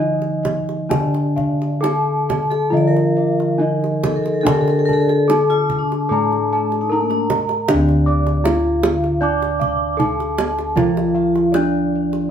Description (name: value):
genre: Javanese gamelan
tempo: 64-78 BPM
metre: 4/4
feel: straight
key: D pelog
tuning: A4 = 438 Hz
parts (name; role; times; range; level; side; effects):
- gamelan-type bronze metallophone; melody; 0.0-12.3 s; D4 to D5; -21 LUFS; left 1 dB; none
- gamelan-type bronze metallophone; accompaniment; 0.0-12.3 s; D3 to D4; -23 LUFS; right 1 dB; none
- gamelan-type bossed gongs; arpeggios; 0.0-12.0 s; D5 to D6; -26 LUFS; left 3 dB; none
- gamelan-type bronze metallophone; arpeggios; 0.0-12.3 s; D5 to D6; -25 LUFS; right 3 dB; none
- gamelan-type bossed gongs; bass; 0.0-12.3 s; D2 to F4-30c; -23 LUFS; equal; none
- kendang; percussion; 0.2-12.2 s; none; -24 LUFS; right 4 dB; none
- vibraphone with medium mallets; second line; 2.5-7.2 s; Bb3-20c to D5; -20 LUFS; left 3 dB; none
room: wet studio reverb, RT60 0.7 s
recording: band playing live in one room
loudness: -15 LUFS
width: side -8 dB against mid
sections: 0.0-7.7 A section; 7.7-12.3 B section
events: none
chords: none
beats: | 0.90 1.83 2.73 3.61 | 4.46 5.30 6.11 6.91 | 7.69 8.46 9.23 10.00 | 10.77 11.54 12.30